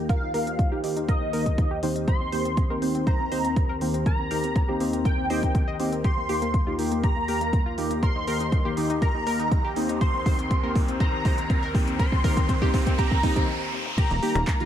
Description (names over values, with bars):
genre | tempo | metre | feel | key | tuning
progressive house | 121 BPM | 4/4 | straight | unclear | A4 = 441 Hz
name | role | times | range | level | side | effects
warm analog pad | sustained chords | 0.0-14.7 s | Eb2 to C5 | -33 LUFS | left 1 dB | chorus, sidechain pumping
analog pluck | arpeggios | 0.0-14.7 s | Bb3 to Eb5 | -32 LUFS | left 1 dB | chorus, sidechain pumping, ping-pong delay
deep mellow chord stab | stabs | 0.0-14.7 s | Eb3 to Eb5 | -30 LUFS | equal | chorus, sidechain pumping, ping-pong delay
wide unison lead | melody | 0.1-14.7 s | Eb5 to C6 | -30 LUFS | equal | ensemble chorus, dub echo
deep house drum kit | drums | 0.1-14.7 s | crash cymbal, finger snaps, handclaps, hi-hat, toms | -39 LUFS | equal | sidechain pumping on hats, high-pass filter on hats, small room ambience, sidechain pumping on toms, high-pass filter on toms, sidechain pumping on cymbals, high-pass filter on cymbals, high-pass filter on snare
electronic kick drum | drums | 0.1-14.6 s | none | -23 LUFS | equal | small room ambience
riser | sound effects | 7.7-14.0 s | none | -36 LUFS | equal | none
tight sequencer bass | bass | 14.1-14.5 s | Eb1 | -25 LUFS | equal | sidechain pumping
room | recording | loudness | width
light reverb | none | -22 LUFS | side -10 dB against mid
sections
0.0-14.0 A section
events
build-up 0.0-14.0; filter sweep on synth pluck 0.0-14.0; drum fill 6.0-13.5, 13.7; riser 7.7-14.0; stop 13.5-14.0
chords
0.0 Cm7/Eb